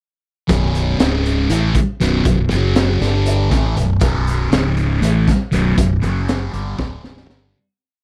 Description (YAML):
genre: psychedelic rock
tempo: 238 BPM (eighths)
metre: 7/8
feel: straight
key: B minor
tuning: A4 = 438 Hz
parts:
  - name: thick fuzz guitar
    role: riff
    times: 0.5-7.5 s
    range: B1 to A3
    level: -21 LUFS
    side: equal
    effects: distortion, phaser
  - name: fingered electric bass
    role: bass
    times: 0.5-7.5 s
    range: B0 to A1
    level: -21 LUFS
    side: equal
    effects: none
  - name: crunchy breakbeat drum kit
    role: drums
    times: 0.5-7.4 s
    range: hi-hat, kick drum, snare drum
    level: -22 LUFS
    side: equal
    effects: none
room: little or no reverb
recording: none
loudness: -17 LUFS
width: mono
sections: 0.5-7.5 riff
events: fade-out 5.8-7.5; drum fill 6.8-7.5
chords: 0.5 B5; 1.0 C#5; 1.5 B5; 2.5 F#5; 3.0 G5; 3.5 B5; 4.5 C#5; 5.0 B5; 6.0 F#5; 6.5 Bm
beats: | 0.49 0.74 0.99 1.25 1.50 1.75 2.00 | 2.25 2.50 2.76 3.01 3.26 3.51 3.77 | 4.02 4.27 4.52 4.77 5.03 5.28 5.53 | 5.78 6.03 6.29 6.54 6.79 7.04 7.29